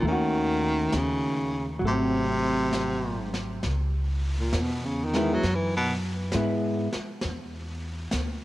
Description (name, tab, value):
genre	jazz ballad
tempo	67 BPM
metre	4/4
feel	swing 67% on 8ths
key	C# minor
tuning	A4 = 440 Hz
part	clear baritone saxophone	melody	0.0-5.9 s	A#2 to F#3	-28 LUFS	equal	cassette tape, analog delay
part	vintage hollow-body jazz guitar	accompaniment	0.0-6.9 s	D#3 to F#4	-28 LUFS	equal	cassette tape
part	upright bass	bass	0.0-8.4 s	G#1 to G#2	-30 LUFS	equal	none
part	jazz brush drum kit	drums	0.0-8.4 s	brushed snare drum, hi-hat, snare drum	-36 LUFS	equal	none
room	light reverb, studio ambience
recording	home recording on cassette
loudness	-24 LUFS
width	side -16 dB against mid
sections	0.0-3.6 A section; 3.6-8.4 B section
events	baritone saxophone solo 3.6-8.4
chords	0.0 D#m7b5; 1.8 G#7b9; 3.6 C#m7; 7.2 E7(no3)